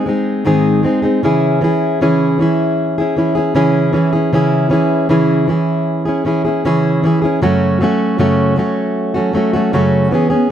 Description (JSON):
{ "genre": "pop", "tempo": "78 BPM", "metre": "4/4", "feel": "straight", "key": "C# minor", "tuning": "A4 = 438 Hz", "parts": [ { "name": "fingerpicked plugged-in steel-string acoustic guitar", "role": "solo", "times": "0.0-10.5 s", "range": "F#2 to G#4", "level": "-12 LUFS", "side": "equal", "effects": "none" } ], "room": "moderate small room ambience, RT60 0.5 s", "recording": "close, detailed microphones", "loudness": "-12 LUFS", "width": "side -10 dB against mid", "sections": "0.0-1.2 A section; 1.2-10.5 B section", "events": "none", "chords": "0.0 G#; 1.2 C#m; 7.4 F#m" }